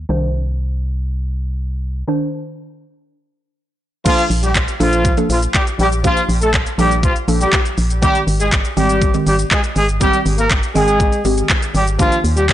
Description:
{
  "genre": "dance-pop",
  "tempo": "121 BPM",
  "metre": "4/4",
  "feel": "straight",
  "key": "Bb major",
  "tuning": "A4 = 435 Hz",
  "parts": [
    { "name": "mallet-like synth pluck", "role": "accompaniment", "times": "0.0-12.5 s", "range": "Eb3 to G5", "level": "-22 LUFS", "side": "right 1 dB", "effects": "chorus, phaser" },
    { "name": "organ-like FM bass", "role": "bass", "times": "0.0-12.5 s", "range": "Ab1 to Eb2", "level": "-18 LUFS", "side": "equal", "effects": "sidechain pumping" },
    { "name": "warm horn section", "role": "melody", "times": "4.1-12.4 s", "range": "F3 to Bb4", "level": "-17 LUFS", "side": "equal", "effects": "sidechain pumping, digital delay" },
    { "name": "pop drum kit", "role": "drums", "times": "4.1-12.5 s", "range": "crash cymbal, handclaps, hi-hat, kick drum, shaker", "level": "-18 LUFS", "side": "equal", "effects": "none" }
  ],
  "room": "light reverb",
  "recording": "blown-out, overdriven recording, overdrive, low-pass filter, nothing above 10.3 kHz",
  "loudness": "-14 LUFS",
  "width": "side -12 dB against mid",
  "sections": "0.0-4.1 A section; 4.1-12.5 B section",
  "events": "filter sweep 0.0-4.1; break 2.1-4.1; drop 4.1-12.5",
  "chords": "0.1 Cmadd9; 4.1 Bbmaj7; 8.0 Abmaj7; 12.0 Ebmaj7",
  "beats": "| 0.09 0.59 1.08 1.58 | 2.08 2.57 3.07 3.56 | 4.06 4.55 5.05 5.55 | 6.04 6.54 7.03 7.53 | 8.03 8.52 9.02 9.51 | 10.01 10.51 11.00 11.50 | 11.99 12.49"
}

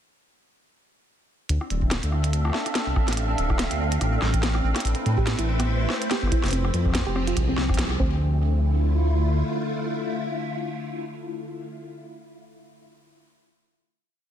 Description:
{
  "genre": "IDM",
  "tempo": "143 BPM",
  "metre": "4/4",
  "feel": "swing 56% on 16ths",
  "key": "D dorian",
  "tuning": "A4 = 441 Hz",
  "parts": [
    { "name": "soft string machine", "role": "sustained chords", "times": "1.5-11.8 s", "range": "D3 to F5", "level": "-29 LUFS", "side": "equal", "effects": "phaser, ensemble chorus" },
    { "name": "dark detuned saw bass", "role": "bass", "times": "1.5-9.4 s", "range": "D1 to A2", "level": "-23 LUFS", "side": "equal", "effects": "none" },
    { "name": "glitchy drum kit", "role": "drums", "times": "1.5-8.0 s", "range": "hi-hat, rim click, snare drum", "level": "-29 LUFS", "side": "equal", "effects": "studio reverb, ping-pong delay" },
    { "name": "pulsing gated texture", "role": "texture", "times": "1.5-8.2 s", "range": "C4", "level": "-35 LUFS", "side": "right 4 dB", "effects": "chorus, built-in reverb" },
    { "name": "electronic kick drum", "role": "drums", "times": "1.8-8.1 s", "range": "none", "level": "-26 LUFS", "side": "equal", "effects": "studio reverb" },
    { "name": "soft round pluck", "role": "arpeggios", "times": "5.2-8.4 s", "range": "B3 to G4", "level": "-31 LUFS", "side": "right 4 dB", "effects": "chorus, tape echo" }
  ],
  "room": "little or no reverb",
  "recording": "dense, heavily limited modern master",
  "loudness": "-22 LUFS",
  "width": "side -10 dB against mid",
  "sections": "1.5-8.2 groove; 8.2-11.6 final chord",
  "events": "band accent 7.8",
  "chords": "1.5 Dm9; 4.6 Am9; 6.5 Fmadd9; 8.0 D5; 8.2 Dmadd9",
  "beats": "| 1.49 1.91 2.33 2.75 | 3.17 3.59 4.01 4.43 | 4.85 5.27 5.69 6.11 | 6.53 6.95 7.37 7.79 | 8.21 8.63 9.05 9.47 | 9.88 10.30 10.72 11.14"
}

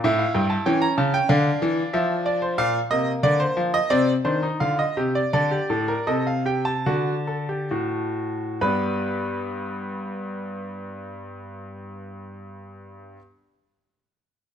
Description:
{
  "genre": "classical, baroque-style 3-part fugue for grand piano",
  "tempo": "64-96 BPM",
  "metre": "4/4",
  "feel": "straight",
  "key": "unclear",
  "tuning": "A4 = 439 Hz",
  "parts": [
    { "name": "clear grand piano", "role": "solo", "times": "0.0-13.2 s", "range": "G2 to B5", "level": "-22 LUFS", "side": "equal", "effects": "none" }
  ],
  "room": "moderate recital hall reverb, RT60 1.3 s",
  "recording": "close, detailed microphones",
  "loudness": "-21 LUFS",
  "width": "side -9 dB against mid",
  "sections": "0.0-8.6 A section; 8.6-12.4 B section",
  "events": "slowing down 1.3-8.6",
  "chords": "0.0 A7; 1.3 Dm; 2.6 Bb; 3.9 Cm; 5.3 D7sus4; 6.9 D; 8.6 G",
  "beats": "| 0.03 0.66 1.29 1.93 | 2.57 3.23 3.90 4.60 | 5.32 6.07 6.86 7.71 | 8.61 9.55 10.48 11.41"
}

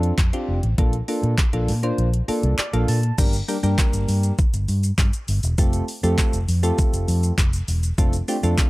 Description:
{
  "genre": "dance-pop",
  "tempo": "100 BPM",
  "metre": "4/4",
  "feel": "straight",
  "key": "unclear",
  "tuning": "A4 = 440 Hz",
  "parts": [
    { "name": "soft electric-piano-like synth keys", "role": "accompaniment", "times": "0.0-8.7 s", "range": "G3 to A5", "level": "-25 LUFS", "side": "equal", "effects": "chorus, sidechain pumping" },
    { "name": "vintage muted fingered electric bass", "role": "bass", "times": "0.0-8.5 s", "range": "E1 to Bb2", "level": "-21 LUFS", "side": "equal", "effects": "sidechain pumping" },
    { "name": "pop drum kit", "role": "drums", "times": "0.0-8.7 s", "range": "crash cymbal, handclaps, hi-hat, kick drum, shaker", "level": "-21 LUFS", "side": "equal", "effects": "overdrive" }
  ],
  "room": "digital ambience",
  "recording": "dry, gritty hardware recording",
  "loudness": "-18 LUFS",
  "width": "side -20 dB against mid",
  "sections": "0.0-3.2 A section; 3.2-8.7 B section",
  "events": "kick muted 2.0-3.2; synth keys fill 2.3-3.2",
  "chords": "0.0 Dm7/F; 0.8 Bbmaj7; 3.2 Gm; 5.6 Fadd9; 8.0 Dm7/F",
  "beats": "0.18 | 0.78 1.38 1.98 2.58 | 3.18 3.78 4.38 4.98 | 5.58 6.18 6.78 7.38 | 7.98 8.58"
}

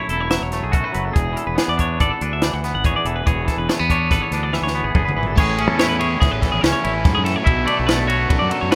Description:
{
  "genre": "math rock and midwest emo",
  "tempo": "143 BPM",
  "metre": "5/4",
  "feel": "straight",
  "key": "A major",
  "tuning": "A4 = 440 Hz",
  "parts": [
    { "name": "twangy electric guitar", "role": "accompaniment", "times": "0.0-8.8 s", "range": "E2 to A4", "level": "-25 LUFS", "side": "equal", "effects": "none" },
    { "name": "clean electric guitar", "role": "arpeggios", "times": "0.0-8.8 s", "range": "G#4 to F#5", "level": "-26 LUFS", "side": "equal", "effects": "tremolo" },
    { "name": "fuzz fingered electric bass", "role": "bass", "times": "0.1-8.8 s", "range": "E1 to F#2", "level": "-26 LUFS", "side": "equal", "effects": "overdrive" },
    { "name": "compact cocktail drum kit", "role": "drums", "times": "0.1-8.8 s", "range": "crash cymbal, hi-hat, kick drum, ride cymbal, snare drum, toms", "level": "-23 LUFS", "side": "equal", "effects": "none" },
    { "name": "biting overdriven guitar", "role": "riff", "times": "5.4-8.8 s", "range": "A2 to F#4", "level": "-28 LUFS", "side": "equal", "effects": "none" }
  ],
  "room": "light reverb",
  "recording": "rough home demo mix",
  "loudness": "-19 LUFS",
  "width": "mono",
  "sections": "0.0-5.4 A section; 5.4-8.8 B section",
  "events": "drum fill 4.5-5.4",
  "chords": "0.0 F#m7; 1.2 E7; 5.4 Amaj9; 7.5 Bm11",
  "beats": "0.31 0.73 | 1.15 1.57 2.00 2.42 2.84 | 3.26 3.68 4.10 4.52 4.94 | 5.36 5.78 6.20 6.62 7.04 | 7.46 7.88 8.30 8.71"
}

